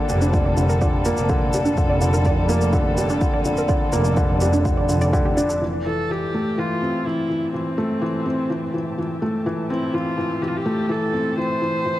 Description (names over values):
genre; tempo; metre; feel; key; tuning
piano and strings electronica; 125 BPM; 4/4; straight; F major; A4 = 440 Hz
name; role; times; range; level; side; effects
muted chamber string section; sustained chords; 0.0-12.0 s; G3 to A5; -31 LUFS; equal; none
felt-muted upright piano; riff; 0.0-12.0 s; D3 to D4; -22 LUFS; left 1 dB; digital delay
warbly dusty pluck; arpeggios; 0.1-5.6 s; D4 to D5; -27 LUFS; right 2 dB; chorus, cassette tape, sidechain pumping, digital delay
rich studio double bass section; bass; 0.1-5.6 s; F1; -22 LUFS; equal; sidechain pumping
shaker; drums; 0.1-5.6 s; none; -35 LUFS; left 1 dB; overdrive
electronic kick drum; drums; 0.3-5.2 s; none; -22 LUFS; equal; overdrive
warm viola; melody; 5.9-12.0 s; C4 to C5; -26 LUFS; equal; none
room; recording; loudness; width
light reverb; none; -18 LUFS; side -14 dB against mid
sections
0.0-5.6 A section; 5.6-12.0 B section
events
fade-in on string section 5.6-12.0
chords
0.0 Gmadd9/F; 5.6 Fmaj9 (rootless)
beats
0.34 0.82 1.30 | 1.78 2.26 2.74 3.22 | 3.70 4.18 4.66 5.14 | 5.62 6.10 6.58 7.06 | 7.54 8.02 8.50 8.98 | 9.46 9.94 10.42 10.90 | 11.38 11.86